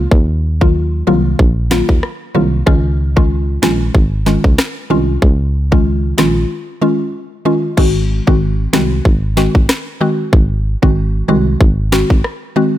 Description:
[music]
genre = dancehall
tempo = 94 BPM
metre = 4/4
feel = swing 56% on 16ths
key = unclear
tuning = A4 = 440 Hz
[part]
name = solid FM bass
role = bass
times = 0.0-12.2 s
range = Ab1 to Eb2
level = -16 LUFS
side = equal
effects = none
[part]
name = island pop drum kit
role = drums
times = 0.1-12.4 s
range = crash cymbal, kick drum, rim click, snare drum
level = -12 LUFS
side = equal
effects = none
[part]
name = mallet-like synth pluck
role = accompaniment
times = 0.6-12.8 s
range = Eb3 to Gb4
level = -16 LUFS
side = equal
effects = chorus, phaser
[sound]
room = little or no reverb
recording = none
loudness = -11 LUFS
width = side -13 dB against mid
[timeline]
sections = 0.0-7.8 A section; 7.8-12.8 B section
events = break 6.5-7.8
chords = 0.0 Ebmadd9; 2.7 Dbadd9; 7.8 Ab7

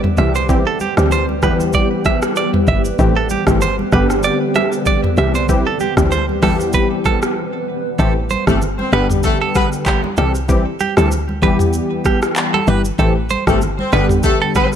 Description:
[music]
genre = afrobeats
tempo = 96 BPM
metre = 4/4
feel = swing 55% on 16ths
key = A minor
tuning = A4 = 440 Hz
[part]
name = warm analog keys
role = accompaniment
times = 0.0-14.8 s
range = D3 to G4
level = -19 LUFS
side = left 2 dB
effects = chorus
[part]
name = granular cloud pad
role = sustained chords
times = 0.0-8.0 s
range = D3 to C5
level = -24 LUFS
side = right 1 dB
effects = built-in reverb
[part]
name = afro-pop drum kit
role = drums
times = 0.0-14.8 s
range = handclaps, hi-hat, kick drum, rim click, shaker, toms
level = -19 LUFS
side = equal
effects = none
[part]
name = congas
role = percussion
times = 0.0-14.7 s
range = none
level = -27 LUFS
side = right 1 dB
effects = none
[part]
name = direct-recorded clean electric guitar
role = riff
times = 0.2-14.7 s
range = G4 to E5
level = -21 LUFS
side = right 7 dB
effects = harmonic tremolo, tape echo
[part]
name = woody log drum bass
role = bass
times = 0.2-14.3 s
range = G1 to E2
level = -19 LUFS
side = equal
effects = none
[part]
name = warm horn section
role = second line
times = 8.5-9.7, 13.5-14.7 s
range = A3 to C5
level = -21 LUFS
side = left 2 dB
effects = none
[sound]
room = digital ambience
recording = none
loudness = -13 LUFS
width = side -9 dB against mid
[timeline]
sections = 0.0-8.0 A section; 8.0-14.8 B section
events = break 7.4-8.0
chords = 0.2 C; 1.4 Em; 3.0 Am7; 3.9 G; 5.2 C; 6.4 Em; 8.0 Am7; 8.9 G; 10.2 C; 11.4 Em; 13.0 Am7; 13.9 G

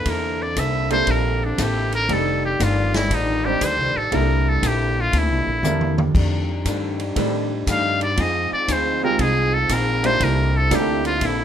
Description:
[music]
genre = jazz, big band swing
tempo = 118 BPM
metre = 4/4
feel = swing 67% on 8ths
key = C mixolydian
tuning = A4 = 440 Hz
[part]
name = trumpet with metal mute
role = melody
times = 0.0-11.4 s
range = D4 to F5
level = -22 LUFS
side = equal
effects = none
[part]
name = muted trombone section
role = sustained chords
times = 0.0-11.4 s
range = D3 to D5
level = -29 LUFS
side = equal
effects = none
[part]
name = upright bass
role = bass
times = 0.0-11.4 s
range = F1 to A2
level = -23 LUFS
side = equal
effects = none
[part]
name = vintage hollow-body jazz guitar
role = accompaniment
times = 0.1-11.4 s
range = F2 to A4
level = -29 LUFS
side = left 4 dB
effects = none
[part]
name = vintage drum kit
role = drums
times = 0.1-11.4 s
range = crash cymbal, hi-hat, kick drum, ride cymbal, snare drum, toms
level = -26 LUFS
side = right 1 dB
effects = none
[part]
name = clear baby grand piano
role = accompaniment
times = 0.9-11.4 s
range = G3 to C5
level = -25 LUFS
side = right 3 dB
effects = none
[sound]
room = moderate club reverb, RT60 0.5 s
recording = none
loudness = -18 LUFS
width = side -9 dB against mid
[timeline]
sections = 0.0-11.4 A section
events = muted trumpet solo 0.0-11.4; drum fill 5.6-6.2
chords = 0.0 C13; 2.1 F13; 4.1 C13; 6.2 F13; 8.2 Fm7; 10.2 C13

